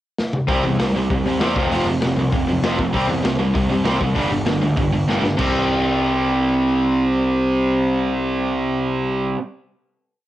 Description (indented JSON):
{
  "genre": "punk rock",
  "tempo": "195 BPM",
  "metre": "4/4",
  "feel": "straight",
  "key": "unclear",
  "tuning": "A4 = 440 Hz",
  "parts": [
    { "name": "raw garage drum kit", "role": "drums", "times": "0.2-5.5 s", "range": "crash cymbal, hi-hat, kick drum, snare drum, toms", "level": "-24 LUFS", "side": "left 1 dB", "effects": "cassette tape" },
    { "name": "distorted electric guitar", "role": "riff", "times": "0.5-9.4 s", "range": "F2 to C4", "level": "-23 LUFS", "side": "left 5 dB", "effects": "overdrive, cassette tape" },
    { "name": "tight distorted guitar", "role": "riff", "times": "0.5-9.4 s", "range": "F2 to C4", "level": "-20 LUFS", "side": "right 4 dB", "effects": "distortion, cassette tape" },
    { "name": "fuzz picked electric bass", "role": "bass", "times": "0.5-9.3 s", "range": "F1 to C3", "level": "-25 LUFS", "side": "left 1 dB", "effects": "overdrive" }
  ],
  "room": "small room ambience",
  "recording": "home recording on cassette",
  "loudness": "-17 LUFS",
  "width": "side -14 dB against mid",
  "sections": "0.0-0.5 pickup bar; 0.5-5.4 verse; 5.4-7.9 final chord",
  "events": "drum fill 0.2-0.5, 5.1-5.4",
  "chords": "0.5 C; 1.6 F5; 2.9 C5; 4.2 G5; 5.4 C5",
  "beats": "0.17 | 0.48 0.79 1.10 1.40 | 1.71 2.02 2.32 2.63 | 2.94 3.24 3.55 3.85 | 4.16 4.47 4.78 5.08 | 5.39 5.70 6.01 6.32 | 6.63 6.94 7.25 7.57"
}